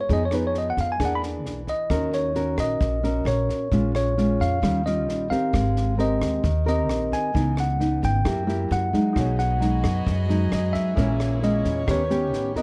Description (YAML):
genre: bossa nova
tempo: 132 BPM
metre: 4/4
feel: straight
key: unclear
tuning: A4 = 440 Hz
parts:
  - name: tine electric piano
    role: melody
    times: 0.0-12.6 s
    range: Cb5 to B5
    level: -29 LUFS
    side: equal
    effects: plate reverb
  - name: nylon-string guitar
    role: accompaniment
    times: 0.0-12.6 s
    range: F#2 to A#4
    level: -28 LUFS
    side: equal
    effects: none
  - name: upright bass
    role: bass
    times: 0.1-12.5 s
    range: G#1 to F#2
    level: -28 LUFS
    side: equal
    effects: none
  - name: compact cocktail drum kit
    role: drums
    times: 0.1-12.6 s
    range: kick drum, rim click, snare drum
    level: -33 LUFS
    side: equal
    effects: none
  - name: clear grand piano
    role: accompaniment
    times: 9.1-12.6 s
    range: D#4 to C#5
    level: -37 LUFS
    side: equal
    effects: none
  - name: warm chamber violin section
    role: sustained chords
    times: 9.2-12.6 s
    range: A#3 to D#5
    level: -38 LUFS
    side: equal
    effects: none
room: light reverb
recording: dark, warm production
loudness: -23 LUFS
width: mono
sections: 0.0-12.6 A section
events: tine electric piano solo 0.0-12.6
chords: 0.1 Fm7b5; 1.0 E7#11; 1.9 D#m7; 3.7 A#m7; 4.6 D#9; 5.5 G#maj9; 7.3 C#m9; 8.3 F#7b9; 9.2 B6; 11.0 A#m7b5; 11.9 D#7b13